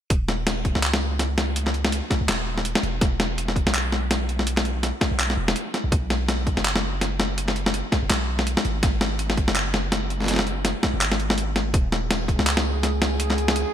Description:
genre	half-time drum and bass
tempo	165 BPM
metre	4/4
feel	swing 57% on 16ths, half-time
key	unclear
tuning	A4 = 441 Hz
part	long sustained 808-style bass	bass	0.1-13.7 s	Eb1 to Db2	-26 LUFS	equal	none
part	boom bap sampler-style drum kit	drums	0.1-13.6 s	handclaps, hi-hat, snare drum	-23 LUFS	equal	overdrive, gated reverb
part	electronic kick drum	drums	0.1-12.4 s	none	-23 LUFS	equal	none
part	metallic inharmonic drone	texture	12.2-13.7 s	Ab4	-30 LUFS	right 3 dB	chorus, built-in reverb
room	moderate plate reverb, RT60 1.8 s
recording	bright 1980s-style digital production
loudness	-21 LUFS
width	side -10 dB against mid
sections	0.1-13.7 A section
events	break 11.4-11.7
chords	0.1 Dbsus2/Eb; 3.0 E5; 5.9 B5; 8.8 Gbsus2; 11.7 Eb7sus4

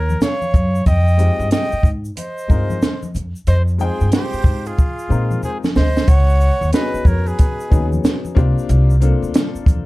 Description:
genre	hip hop, jazz-hop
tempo	92 BPM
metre	4/4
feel	swing 64% on 16ths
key	F minor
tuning	A4 = 440 Hz
part	breathy flugelhorn	melody	0.0-7.9 s	F4 to Eb5	-24 LUFS	equal	none
part	breathy jazz flute	second line	0.0-7.9 s	Ab4 to G5	-29 LUFS	right 6 dB	none
part	upright bass	bass	0.0-9.9 s	C2 to Bb2	-16 LUFS	equal	none
part	congas and tube shaker	percussion	0.1-9.9 s	none	-29 LUFS	left 2 dB	none
part	compact cocktail drum kit	drums	0.2-9.9 s	hi-hat, kick drum, shaker, snare drum	-16 LUFS	equal	none
part	clear upright piano	accompaniment	1.2-9.9 s	Ab3 to G5	-25 LUFS	left 6 dB	none
room	little or no reverb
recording	dark, warm production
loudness	-14 LUFS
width	side -19 dB against mid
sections	0.0-6.1 A section; 6.1-9.9 B section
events	break 0.0-0.9; drum fill 4.8-6.1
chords	0.0 Ebm9; 0.9 Fm9; 6.1 Db9sus4; 8.4 C9sus4

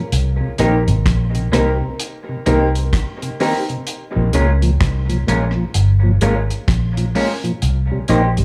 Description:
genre	dub reggae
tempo	64 BPM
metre	4/4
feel	swing 61% on 16ths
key	unclear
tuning	A4 = 439 Hz
part	mellow tonewheel organ	accompaniment	0.0-8.4 s	Bb2 to Eb4	-25 LUFS	equal	overdrive, chorus vibrato, slow rotary speaker
part	vintage muted fingered electric bass	bass	0.1-8.4 s	G1 to Db2	-19 LUFS	equal	none
part	deep reggae drum kit	drums	0.1-8.4 s	hi-hat, kick drum, rim click	-24 LUFS	equal	none
part	electric guitar through a small old amp	accompaniment	0.6-8.2 s	Ab3 to C5	-26 LUFS	equal	lush chorus, tape echo
part	dark upright piano	stabs	0.6-3.6 s	C4 to Bb4	-26 LUFS	equal	tape echo
room	light reverb, studio reverb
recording	small room ambience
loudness	-17 LUFS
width	mono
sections	0.0-8.4 A section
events	none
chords	0.1 Cm7; 3.9 Bbm7; 7.6 Cm7

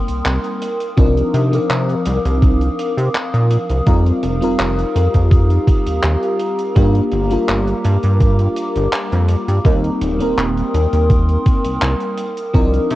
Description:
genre	vaporwave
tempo	83 BPM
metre	4/4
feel	straight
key	C minor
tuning	A4 = 440 Hz
part	FM electric piano with soft pad layer	accompaniment	0.0-13.0 s	F3 to Bb4	-20 LUFS	left 1 dB	phaser, wide subtle chorus, cassette tape, tape echo
part	warbly tape-like pad	sustained chords	0.0-13.0 s	G4 to Eb6	-24 LUFS	equal	chorus, built-in reverb
part	chorused synth bass	bass	0.1-13.0 s	Eb1 to C3	-16 LUFS	equal	none
part	tight metal drum kit	drums	0.1-13.0 s	handclaps, hi-hat	-25 LUFS	equal	vintage 12-bit sampler grit
part	electronic kick drum	drums	1.0-12.7 s	none	-14 LUFS	equal	vintage 12-bit sampler grit
room	light reverb, small room ambience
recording	worn, warbling old tape, cassette tape, warbly pitch drift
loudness	-14 LUFS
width	side -16 dB against mid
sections	0.0-13.0 A section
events	none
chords	0.0 Eb6; 0.6 Cm11; 3.9 F9sus4; 6.8 Gm7; 9.7 Eb6; 12.2 Cm11

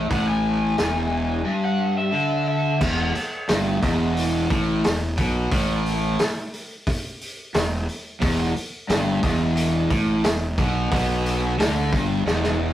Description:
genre	blues rock power trio and southern rock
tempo	89 BPM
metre	4/4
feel	straight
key	unclear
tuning	A4 = 435 Hz
part	overdriven slide guitar	melody	0.0-2.8 s	E5 to G#5	-26 LUFS	left 1 dB	none
part	cranked stack guitar	riff	0.0-12.7 s	E2 to D3	-24 LUFS	equal	overdrive
part	fuzz fingered electric bass	bass	0.0-12.7 s	E1 to D2	-24 LUFS	equal	overdrive
part	vintage drum kit	drums	0.1-12.6 s	crash cymbal, hi-hat, kick drum, snare drum	-25 LUFS	equal	none
room	moderate small room reverb, RT60 0.6 s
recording	rough rehearsal-room recording, warm saturation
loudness	-20 LUFS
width	side -12 dB against mid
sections	0.0-2.8 A section; 2.8-12.7 B section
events	drum fill 12.3-12.7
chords	0.0 E; 2.8 E5

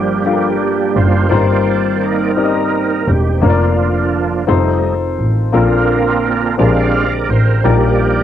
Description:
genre	slow gospel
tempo	57 BPM (dotted quarters)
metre	6/8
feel	straight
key	Bb major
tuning	A4 = 440 Hz
part	warm baby grand piano	accompaniment	0.0-8.2 s	G2 to F5	-17 LUFS	left 8 dB	cassette tape
part	bright tonewheel organ	sustained chords	0.0-8.2 s	Eb3 to F5	-16 LUFS	right 6 dB	fast rotary speaker, chorus vibrato, cassette tape
part	mellow French horn section	sustained chords	0.0-8.2 s	D3 to D5	-24 LUFS	right 7 dB	cassette tape
part	rich double bass	bass	0.0-8.2 s	E1 to Bb1	-16 LUFS	equal	none
room	moderate booth ambience, RT60 0.2 s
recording	home recording on cassette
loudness	-12 LUFS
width	side -10 dB against mid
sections	0.0-8.2 A section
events	tonewheel organ solo 0.0-8.2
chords	0.0 Gm7; 1.3 Cm7/G; 3.4 Bb/F; 4.5 F7; 5.5 Bbmaj7; 6.6 Bb13; 7.6 Ebmaj7/Bb

